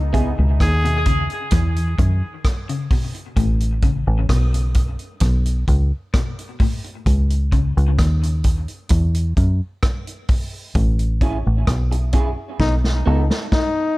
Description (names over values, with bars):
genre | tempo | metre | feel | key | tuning
dub reggae | 65 BPM | 4/4 | straight | C# minor | A4 = 440 Hz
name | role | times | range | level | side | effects
deep dub fingered electric bass | bass | 0.0-13.3 s | A1 to F#2 | -18 LUFS | equal | none
electric guitar through a small old amp | accompaniment | 0.1-0.3, 11.2-13.2 s | B3 to A4 | -28 LUFS | right 3 dB | analog chorus, dub echo
electric guitar at the edge of break-up | arpeggios | 0.1-7.7 s | A2 to E3 | -28 LUFS | left 4 dB | dub echo
vintage drum kit | drums | 0.1-13.7 s | hi-hat, kick drum, rim click, snare drum | -20 LUFS | equal | none
raspy tenor saxophone | melody | 0.6-1.0 s | G#4 | -25 LUFS | equal | dub echo
warm trombone | second line | 12.6-14.0 s | D#4 | -24 LUFS | left 3 dB | dub echo
room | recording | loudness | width
studio reverb | echo-heavy mix | -17 LUFS | side -20 dB against mid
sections
0.0-14.0 A section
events
break 0.0-14.0; band accent 10.8-14.0; drum fill 12.6-14.0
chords
0.0 C#7(no3); 1.5 E5; 3.4 N.C.; 5.2 Bsus2; 7.1 C#sus2; 8.9 Esus2; 10.8 Amaj7; 12.6 B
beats
0.60 1.52 2.44 | 3.37 4.29 5.21 6.14 | 7.06 7.98 8.91 9.83 | 10.75 11.67 12.60 13.52